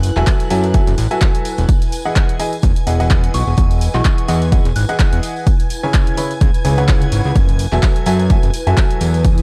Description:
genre	piano house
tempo	127 BPM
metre	4/4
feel	swing 56% on 16ths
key	unclear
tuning	A4 = 440 Hz
part	string machine, violins	sustained chords	0.0-9.4 s	E4 to G#6	-34 LUFS	equal	ensemble chorus, sidechain pumping
part	fat analog bass	bass	0.0-9.4 s	E1 to F#2	-18 LUFS	equal	sidechain pumping
part	punchy analog drum machine	drums	0.0-9.4 s	handclaps, hi-hat	-28 LUFS	equal	overdrive
part	tambourine	percussion	0.0-9.4 s	none	-38 LUFS	equal	none
part	airy breathy pad	texture	0.0-9.4 s	E4 to G#5	-32 LUFS	equal	chorus, sidechain pumping
part	bright upright piano	riff	0.2-9.2 s	C#3 to B5	-24 LUFS	equal	sidechain pumping
part	electronic kick drum	drums	0.3-9.4 s	none	-16 LUFS	equal	overdrive
part	soft synth bell	melody	3.3-5.0 s	C#6 to F#6	-30 LUFS	equal	chorus, phaser, vintage 12-bit sampler grit, digital delay
room	little or no reverb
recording	dark, warm production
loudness	-15 LUFS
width	mono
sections	0.0-9.4 A section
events	none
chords	0.0 F#m9; 1.7 Emaj9; 5.5 C#m7; 7.4 F#m9

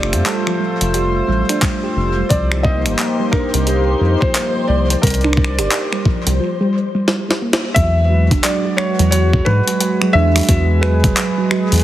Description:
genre	IDM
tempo	88 BPM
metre	4/4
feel	swing 62% on 16ths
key	unclear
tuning	A4 = 445 Hz
part	felt-muted upright piano	melody	0.0-11.8 s	A4 to E5	-22 LUFS	equal	digital delay
part	warm analog pad	sustained chords	0.0-11.8 s	G#3 to D5	-22 LUFS	left 1 dB	chorus, sidechain pumping
part	round analog bass	bass	0.0-11.8 s	E1 to G#2	-16 LUFS	equal	none
part	jungle sampler-style drum kit	drums	0.0-11.8 s	finger snaps, handclaps, hi-hat, snare drum, toms	-20 LUFS	equal	studio reverb
part	flickering grainy texture	texture	0.0-6.4 s	C5 to E6	-29 LUFS	left 3 dB	built-in reverb
part	harp-like synth pluck	arpeggios	0.3-11.6 s	F3 to G4	-21 LUFS	right 3 dB	chorus, phaser, tape echo
part	electronic kick drum	drums	1.6-11.1 s	none	-17 LUFS	equal	studio reverb
room	light reverb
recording	heavily compressed radio sound, multiband compression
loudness	-13 LUFS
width	side -13 dB against mid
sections	0.0-7.8 A section; 7.8-11.8 B section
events	drum fill 7.1-7.8; band accent 7.5-7.9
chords	0.0 Fmaj7; 2.3 Cm7; 7.8 Eadd9

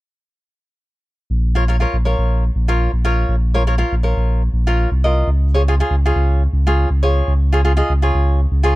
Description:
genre	calypso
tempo	121 BPM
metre	4/4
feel	straight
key	unclear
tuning	A4 = 438 Hz
part	sub bass with octave	bass	1.3-8.8 s	Bb1 to Db2	-15 LUFS	equal	none
part	cavaquinho	accompaniment	1.6-8.8 s	F4 to Eb5	-20 LUFS	equal	none
room	small room ambience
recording	dry, close 1970s-style studio recording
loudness	-14 LUFS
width	side -18 dB against mid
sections	1.3-8.8 A section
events	none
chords	1.3 Bbm; 5.3 Db

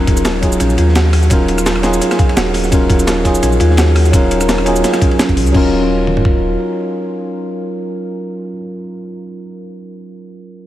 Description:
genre	liquid drum and bass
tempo	170 BPM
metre	4/4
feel	swing 54% on 16ths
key	Eb minor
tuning	A4 = 440 Hz
part	tine electric piano	accompaniment	0.0-10.7 s	Gb3 to Bb4	-17 LUFS	equal	tape echo
part	thumb-piano-like synth pluck	arpeggios	0.0-5.7 s	Db4 to Gb4	-22 LUFS	left 2 dB	chorus, tape echo
part	warm sub bass	bass	0.0-6.6 s	Eb1 to Eb2	-16 LUFS	equal	tube saturation
part	breakbeat sampler-style drum kit	drums	0.1-6.3 s	kick drum, toms	-14 LUFS	equal	none
part	breakbeat sampler-style drum kit	drums	0.1-5.6 s	crash cymbal, hi-hat, rim click, shaker, snare drum	-20 LUFS	equal	none
part	crunchy breakbeat drum kit	drums	0.1-5.3 s	ride cymbal, snare drum	-25 LUFS	equal	high-pass filter on cymbals, high-pass filter on snare, high-pass filter on room
room	moderate huge ambient reverb, RT60 5.0 s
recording	dreamy mix soaked in reverb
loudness	-11 LUFS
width	side -13 dB against mid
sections	0.0-5.5 A section; 5.5-8.4 B section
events	drop 0.0-5.5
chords	0.0 Ebm9

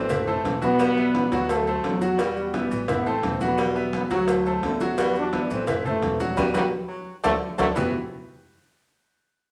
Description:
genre	latin, salsa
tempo	172 BPM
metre	4/4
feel	straight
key	E minor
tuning	A4 = 440 Hz
part	mellow trombone section	melody	0.0-7.9 s	A2 to D4	-27 LUFS	equal	none
part	breathy baritone saxophone	second line	0.0-7.9 s	D3 to G3	-37 LUFS	equal	none
part	bright grand piano	accompaniment	0.0-7.9 s	E3 to F#5	-29 LUFS	equal	none
part	upright bass	bass	0.0-7.9 s	E1 to E2	-37 LUFS	equal	none
part	congas	percussion	0.1-7.8 s	none	-34 LUFS	equal	none
part	cowbell and bongos	percussion	0.1-7.8 s	none	-33 LUFS	equal	none
part	maracas	percussion	0.1-7.8 s	none	-52 LUFS	equal	none
room	wet large studio reverb, RT60 0.9 s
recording	none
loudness	-24 LUFS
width	mono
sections	0.0-7.8 A section; 7.8-9.2 B section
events	drum fill 6.4-7.8; band accent 6.4-7.8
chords	0.1 Am; 0.8 Emadd9; 1.5 D7; 2.2 Emadd9; 2.9 Am; 3.6 Emadd9; 4.3 D7; 5.0 Emadd9; 5.7 Am; 6.4 Emadd9; 7.1 D7; 7.8 Emadd9

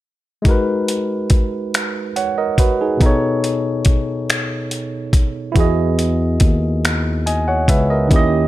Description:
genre	slow six-eight R&B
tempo	47 BPM (dotted quarters)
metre	6/8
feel	straight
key	G# minor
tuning	A4 = 443 Hz
part	barky tine electric piano	accompaniment	0.4-8.5 s	B2 to G#5	-19 LUFS	moving between left 3 dB and right 5 dB	auto-pan
part	dusty soul sampler-style drum kit	drums	0.5-8.3 s	finger snaps, hi-hat, kick drum	-16 LUFS	equal	none
part	barky tine electric piano	bass	5.6-8.5 s	C#2 to E2	-18 LUFS	equal	none
room	little or no reverb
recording	none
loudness	-15 LUFS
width	side -15 dB against mid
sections	0.4-8.5 A section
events	none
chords	0.4 G#m7; 3.0 B7; 5.6 Emaj7

